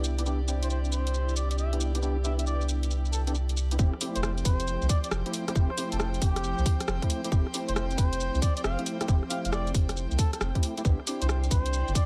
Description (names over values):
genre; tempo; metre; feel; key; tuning
UK garage, two-step garage; 136 BPM; 4/4; swing 66% on 16ths; F lydian; A4 = 441 Hz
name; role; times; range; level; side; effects
soft string machine; sustained chords; 0.0-12.1 s; C4 to C6; -46 LUFS; equal; none
percussive organ stab; stabs; 0.0-12.1 s; A3 to G4; -38 LUFS; equal; ensemble chorus, delay
soft dub sub bass; bass; 0.0-11.9 s; F1 to C2; -31 LUFS; equal; sidechain pumping
garage drum kit; drums; 0.0-12.1 s; hi-hat, rim click, shaker; -36 LUFS; equal; none
warm chamber string section; texture; 0.0-12.1 s; F3 to G5; -42 LUFS; equal; sidechain pumping
trumpet with cup mute; melody; 0.6-12.0 s; G4 to F5; -38 LUFS; equal; delay
electronic kick drum; drums; 3.8-12.1 s; none; -27 LUFS; equal; none
room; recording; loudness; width
little or no reverb; none; -28 LUFS; mono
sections
0.0-3.8 A section; 3.8-12.1 B section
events
drop 3.8-12.1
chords
0.0 Cmaj9; 3.8 Fmaj9; 10.8 Cmaj9